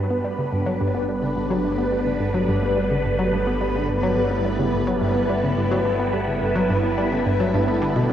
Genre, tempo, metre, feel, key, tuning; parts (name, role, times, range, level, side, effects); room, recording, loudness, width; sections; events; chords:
ambient, sequencer-driven space music; 107 BPM; 4/4; straight; G major; A4 = 440 Hz
phased string machine; sustained chords; 0.0-8.1 s; G3 to B4; -22 LUFS; equal; ensemble chorus, phaser, shimmer reverb
analog pluck; riff; 0.0-8.1 s; G2 to B3; -23 LUFS; equal; chorus, analog delay, shimmer reverb
fat analog bass; bass; 0.0-8.1 s; G1; -31 LUFS; equal
wind-like tuned noise texture; texture; 0.6-8.1 s; A3 to A4; -32 LUFS; equal; built-in reverb, shimmer reverb
wet huge ambient reverb, RT60 7.9 s; worn, warbling old tape, cassette tape, warbly pitch drift; -19 LUFS; side -10 dB against mid
0.0-8.1 A section
0.0 G